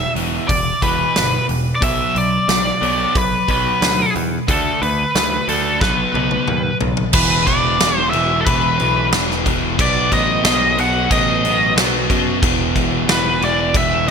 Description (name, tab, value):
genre	hard rock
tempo	91 BPM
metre	4/4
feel	straight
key	unclear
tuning	A4 = 440 Hz
part	biting lead guitar	melody	0.0-14.1 s	A4 to F#5	-18 LUFS	left 1 dB	overdrive
part	crunchy overdriven guitar	riff	0.0-14.1 s	E2 to D4	-20 LUFS	right 1 dB	lush chorus
part	modern bright picked electric bass	bass	0.0-14.1 s	E1 to F#2	-24 LUFS	equal	none
part	big rock drum kit	drums	0.2-14.1 s	crash cymbal, hi-hat, kick drum, snare drum, toms	-20 LUFS	equal	gated reverb
room	moderate plate reverb, RT60 3.6 s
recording	bright 1980s-style digital production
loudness	-14 LUFS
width	side -6 dB against mid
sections	0.0-7.1 A section; 7.1-14.1 B section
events	drum fill 5.8-7.1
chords	0.0 Em; 1.8 Bm; 4.5 D5; 5.8 B; 7.1 E5; 9.8 B; 12.4 E5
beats	0.49 1.16 | 1.82 2.49 3.15 3.82 | 4.48 5.15 5.81 6.48 | 7.14 7.80 8.46 9.12 | 9.78 10.44 11.10 11.76 | 12.42 13.08 13.74